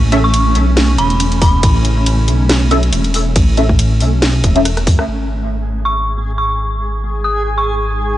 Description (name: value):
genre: deep dubstep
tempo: 139 BPM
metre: 4/4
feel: swing 55% on 16ths, half-time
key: G# phrygian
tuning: A4 = 440 Hz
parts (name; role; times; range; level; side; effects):
- granular cloud pad; sustained chords; 0.0-8.2 s; G#3 to D#4; -22 LUFS; right 1 dB; built-in reverb
- dark detuned saw bass; bass; 0.0-8.2 s; E1 to F#2; -15 LUFS; equal; transformer saturation
- filtered dub chord stab; stabs; 0.1-7.1 s; B3 to F#5; -19 LUFS; left 1 dB; phaser, ensemble chorus, dub echo
- garage drum kit; drums; 0.1-5.1 s; hi-hat, ride cymbal, rim click, snare drum; -20 LUFS; equal; small room ambience
- dark detuned synth bell; melody; 0.2-1.8, 5.9-7.9 s; B5 to D#6; -19 LUFS; equal; chorus, dub echo
- electronic kick drum; drums; 1.4-5.0 s; none; -13 LUFS; equal; small room ambience
- backwards swelling texture; texture; 6.0-8.2 s; G#4; -24 LUFS; right 1 dB; built-in reverb
room: little or no reverb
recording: dry, gritty hardware recording, cassette tape, nothing above 10.4 kHz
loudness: -12 LUFS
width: side -14 dB against mid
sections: 0.0-5.1 A section; 5.1-8.2 B section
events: drop 0.0-5.1; drum fill 4.7-5.1; band accent 5.0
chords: 0.0 A; 5.1 G#5